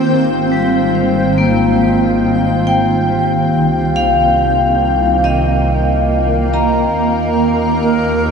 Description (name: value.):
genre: ambient.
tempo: 70 BPM.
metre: 4/4.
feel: straight.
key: unclear.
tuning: A4 = 440 Hz.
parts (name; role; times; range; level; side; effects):
granular cloud pad; sustained chords; 0.0-8.3 s; Eb3 to G5; -16 LUFS; right 2 dB; built-in reverb.
glass harmonica; texture; 0.0-8.3 s; F4 to G5; -22 LUFS; equal; none.
alto flute; melody; 0.1-8.3 s; Eb4 to Bb4; -28 LUFS; left 1 dB; ping-pong delay.
rich studio double bass section; bass; 0.1-8.3 s; Ab1 to Eb2; -20 LUFS; equal; none.
vibraphone with hard mallets; arpeggios; 0.5-8.3 s; G3 to Bb5; -15 LUFS; left 2 dB; ping-pong delay.
room: wet huge ambient reverb, RT60 7.7 s.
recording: cassette tape, nothing above 10.9 kHz.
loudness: -12 LUFS.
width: side -6 dB against mid.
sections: 0.1-8.3 A section.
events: fade-in on alto flute 0.1-8.3; fade-out on glass harmonica 0.1-8.3.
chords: 0.1 Abmaj7; 3.5 Cm7; 7.0 Eb7.